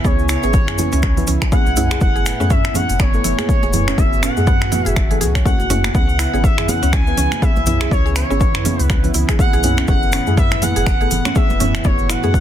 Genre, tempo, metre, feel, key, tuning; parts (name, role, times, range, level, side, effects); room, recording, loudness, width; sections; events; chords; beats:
afro house; 122 BPM; 4/4; swing 58% on 16ths; C# minor; A4 = 439 Hz
expressive portamento lead; melody; 0.0-12.4 s; C#5 to G#5; -22 LUFS; equal; wide subtle chorus, ping-pong delay
warm analog pad; sustained chords; 0.0-12.4 s; A2 to G#5; -26 LUFS; right 2 dB; chorus, sidechain pumping
mallet-like synth pluck; arpeggios; 0.0-12.3 s; B3 to C#5; -26 LUFS; right 1 dB; chorus, sidechain pumping, ping-pong delay
deep mellow chord stab; stabs; 0.0-12.4 s; A3 to B4; -26 LUFS; left 3 dB; chorus, sidechain pumping, ping-pong delay
warm sub bass; bass; 0.0-12.4 s; E1 to F#2; -20 LUFS; equal; sidechain pumping
electronic kick drum; drums; 0.0-12.4 s; -16 LUFS; equal
cabasa; percussion; 0.0-12.4 s; -31 LUFS; left 4 dB
congas; percussion; 0.0-12.4 s; -26 LUFS; right 4 dB
deep house drum kit; drums; 0.3-12.2 s; finger snaps, hi-hat, toms; -22 LUFS; equal; soft clipping on snare
little or no reverb; dense, heavily limited modern master; -14 LUFS; side -10 dB against mid
0.0-12.4 A section
0.0 C#m7; 2.0 F#m11; 5.9 C#m7; 9.9 F#m11
| 0.04 0.54 1.03 1.52 | 2.01 2.50 3.00 3.49 | 3.98 4.47 4.96 5.46 | 5.95 6.44 6.93 7.42 | 7.91 8.41 8.90 9.39 | 9.88 10.37 10.87 11.36 | 11.85 12.34